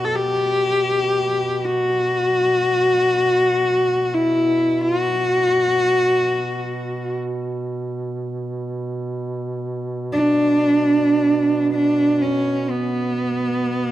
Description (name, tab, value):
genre	caucasian folk, Caucasian lament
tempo	free time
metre	none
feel	none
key	B minor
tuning	A4 = 440 Hz
part	warm cello	melody	0.0-13.9 s	B3 to A4	-17 LUFS	equal	none
part	mellow duduk	drone	0.0-13.9 s	B2	-26 LUFS	right 2 dB	none
room	moderate scoring stage reverb, RT60 2.1 s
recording	dark, warm production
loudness	-17 LUFS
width	side -13 dB against mid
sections	0.0-13.9 A section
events	slowing down 7.5-13.9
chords	none